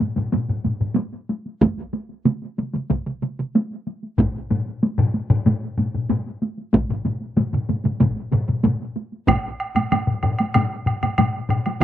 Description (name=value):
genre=japanese traditional, taiko drum ensemble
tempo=94 BPM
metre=4/4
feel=straight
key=none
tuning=none
part: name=taiko ensemble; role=percussion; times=0.0-11.8 s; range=none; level=-22 LUFS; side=right 1 dB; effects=none
part: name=taiko ensemble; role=percussion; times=0.0-11.6 s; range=none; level=-22 LUFS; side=left 2 dB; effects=none
part: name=taiko ensemble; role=percussion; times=1.6-11.8 s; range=none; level=-23 LUFS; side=right 1 dB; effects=none
part: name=taiko ensemble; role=percussion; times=2.3-11.8 s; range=none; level=-25 LUFS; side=right 3 dB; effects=none
part: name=woodblock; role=percussion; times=9.3-11.8 s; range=none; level=-24 LUFS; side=right 3 dB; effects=none
room=light reverb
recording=recorded outdoors, with no room sound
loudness=-20 LUFS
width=side -12 dB against mid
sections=0.0-9.3 A section; 9.3-11.8 B section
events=none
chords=none